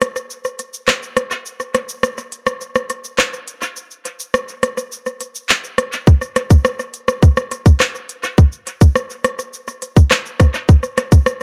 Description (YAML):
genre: dancehall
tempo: 104 BPM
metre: 4/4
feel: straight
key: none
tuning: none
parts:
  - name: island pop drum kit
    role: drums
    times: 0.0-11.4 s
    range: handclaps, hi-hat, kick drum, rim click, shaker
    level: -15 LUFS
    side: equal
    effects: tape echo
room: light reverb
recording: echo-heavy mix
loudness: -16 LUFS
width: mono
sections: 0.0-11.4 A section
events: break 0.0-6.1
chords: none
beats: 0.30 0.88 | 1.46 2.03 2.61 3.19 | 3.77 4.34 4.92 5.50 | 6.07 6.65 7.23 7.80 | 8.38 8.96 9.53 10.11 | 10.69 11.27